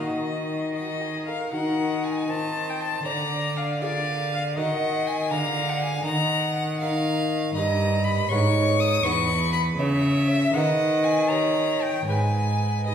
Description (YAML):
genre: classical, baroque-style sonata movement with continuo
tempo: 80 BPM (dotted quarters)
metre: 6/8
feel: rubato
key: Eb minor, G# minor from 7.6 s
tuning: A4 = 442 Hz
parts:
  - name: rich violin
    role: melody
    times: 0.0-12.9 s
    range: C#5 to D#6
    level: -28 LUFS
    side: left 5 dB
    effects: none
  - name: clear violin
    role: second line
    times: 0.0-12.9 s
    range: Gb4 to Gb5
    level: -29 LUFS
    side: right 4 dB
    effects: none
  - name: lute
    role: accompaniment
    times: 0.0-12.9 s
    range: E2 to Bb4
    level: -30 LUFS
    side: left 2 dB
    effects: none
  - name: rich cello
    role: bass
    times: 0.0-12.9 s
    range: E2 to Eb3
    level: -25 LUFS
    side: equal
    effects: none
room: wet recital hall reverb, RT60 1.4 s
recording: heard from further back in the room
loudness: -22 LUFS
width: side -8 dB against mid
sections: 0.0-1.5 A section; 1.5-12.9 B section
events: none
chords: 0.0 Ebm; 2.3 F7/Eb; 3.1 Bb7/D; 4.6 Ebm; 5.3 Bb7/D; 6.1 Ebm; 7.6 D#/G; 8.3 G#m; 9.0 E; 9.8 C#m; 10.5 G#m/D#; 11.3 D#7; 12.1 G#m